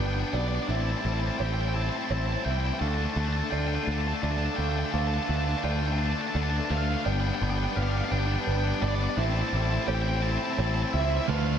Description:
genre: post-rock.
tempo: 57 BPM (dotted quarters).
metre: 6/8.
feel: straight.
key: D dorian.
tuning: A4 = 440 Hz.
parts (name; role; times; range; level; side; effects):
octave-fuzz lead guitar; melody; 0.0-11.6 s; D5 to A5; -34 LUFS; right 3 dB; distortion, ping-pong delay.
hand-pumped harmonium; sustained chords; 0.0-11.6 s; D3 to A5; -37 LUFS; right 5 dB; none.
felt-muted upright piano; arpeggios; 0.0-11.6 s; B4 to F5; -37 LUFS; right 7 dB; ping-pong delay.
twangy electric guitar; arpeggios; 0.0-11.6 s; G2 to G4; -38 LUFS; left 1 dB; ensemble chorus, ping-pong delay.
cranked stack guitar; riff; 0.0-11.6 s; D3 to A4; -32 LUFS; left 7 dB; overdrive.
picked electric bass; bass; 0.0-11.6 s; G1 to D2; -28 LUFS; equal; none.
sludgy distorted guitar; riff; 11.3-11.6 s; D3 to D4; -29 LUFS; right 12 dB; overdrive.
room: moderate lush hall reverb, RT60 2.9 s.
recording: dreamy mix soaked in reverb.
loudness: -25 LUFS.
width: side -8 dB against mid.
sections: 0.0-11.3 A section.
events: build-up 0.0-11.3.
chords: 0.0 G; 0.7 Am7; 2.8 Dm; 7.1 G; 9.2 Am7.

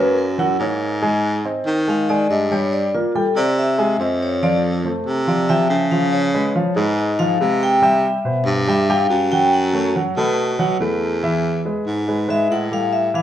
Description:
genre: Afro-Cuban jazz.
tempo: 141 BPM.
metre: 4/4.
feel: straight.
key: unclear.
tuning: A4 = 444 Hz.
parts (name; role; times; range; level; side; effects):
vibraphone with medium hard mallets; melody; 0.0-13.2 s; E4 to G5; -20 LUFS; left 2 dB; none.
warm concert grand piano; accompaniment; 0.0-13.2 s; B2 to Ab5; -20 LUFS; equal; none.
breathy baritone saxophone; bass; 0.0-13.2 s; E2 to Eb3; -20 LUFS; right 1 dB; none.
room: moderate large studio reverb, RT60 0.9 s.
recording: band playing live in one room.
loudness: -16 LUFS.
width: side -11 dB against mid.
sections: 0.0-11.2 A section; 11.2-13.2 A section.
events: vibraphone solo 0.0-13.2.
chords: 0.2 F#add9; 1.0 Ab; 2.7 Gm; 3.6 Caug; 4.4 Fadd9; 6.1 Db7; 7.8 Cmaj7; 9.5 F#m; 10.4 B5; 11.2 E.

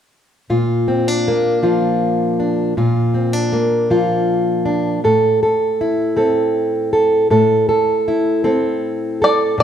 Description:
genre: acoustic folk duo or small band.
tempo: 53 BPM (dotted quarters).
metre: 6/8.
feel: straight.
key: unclear.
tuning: A4 = 441 Hz.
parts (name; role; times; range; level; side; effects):
fingerpicked plugged-in steel-string acoustic guitar; accompaniment; 0.5-9.6 s; A2 to A4; -14 LUFS; equal; none.
bluegrass banjo; melody; 9.2-9.6 s; D5; -14 LUFS; left 1 dB; none.
room: wet studio reverb, RT60 0.9 s.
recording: heard from further back in the room.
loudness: -14 LUFS.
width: side -9 dB against mid.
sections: 0.5-9.6 A section.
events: none.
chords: 0.5 Bb; 5.0 Am.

